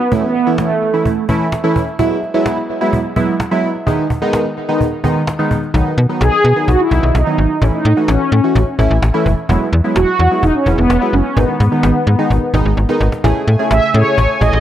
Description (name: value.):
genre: synth-pop.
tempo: 128 BPM.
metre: 4/4.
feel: straight.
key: unclear.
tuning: A4 = 439 Hz.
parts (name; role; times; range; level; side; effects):
mellow synth brass; melody; 0.0-1.2, 6.2-14.6 s; A3 to E5; -15 LUFS; right 1 dB; chorus, tape echo.
cajon; drums; 0.0-14.5 s; none; -20 LUFS; equal; none.
warm analog keys; accompaniment; 0.1-14.6 s; D#3 to G#4; -17 LUFS; right 1 dB; chorus, phaser, tape echo.
slap-like FM bass; bass; 5.7-14.6 s; E1 to B2; -13 LUFS; equal; none.
brassy analog pad; sustained chords; 13.2-14.6 s; C#3 to A3; -22 LUFS; right 2 dB; chorus.
room: moderate spring reverb, RT60 1.6 s.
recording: echo-heavy mix.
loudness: -12 LUFS.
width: side -11 dB against mid.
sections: 0.0-13.2 A section; 13.2-14.6 B section.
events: drum fill 12.8-13.2.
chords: 0.1 A; 2.0 Eadd9; 3.9 G#m; 5.7 B; 7.6 A; 9.5 Eadd9; 11.4 G#m; 13.2 Amaj7.